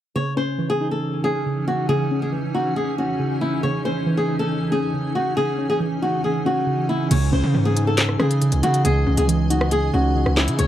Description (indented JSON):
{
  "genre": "hip hop, drill",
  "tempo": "138 BPM",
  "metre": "4/4",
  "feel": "half-time",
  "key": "C# minor",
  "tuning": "A4 = 440 Hz",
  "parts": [
    { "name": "flamenco guitar", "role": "melody", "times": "0.2-10.7 s", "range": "E4 to C#5", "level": "-23 LUFS", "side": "left 1 dB", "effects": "tape echo" },
    { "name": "muted felt-like synth keys", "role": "accompaniment", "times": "0.2-10.7 s", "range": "C#3 to D#4", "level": "-23 LUFS", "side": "right 1 dB", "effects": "chorus" },
    { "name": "granular cloud pad", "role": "sustained chords", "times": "1.1-10.7 s", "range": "E3 to G#5", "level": "-30 LUFS", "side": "left 1 dB", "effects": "built-in reverb" },
    { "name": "distorted 808-style bass", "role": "bass", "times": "7.1-10.7 s", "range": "C#2 to C#3", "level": "-20 LUFS", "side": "equal", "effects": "distortion" },
    { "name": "drill drum kit", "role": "drums", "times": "7.1-10.7 s", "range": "crash cymbal, handclaps, hi-hat, rim click, snare drum", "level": "-24 LUFS", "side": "equal", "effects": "none" }
  ],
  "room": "light reverb",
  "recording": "dark, warm production",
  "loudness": "-18 LUFS",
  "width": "side -12 dB against mid",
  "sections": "0.2-7.1 A section; 7.1-10.7 B section",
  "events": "none",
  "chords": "0.2 C#madd9"
}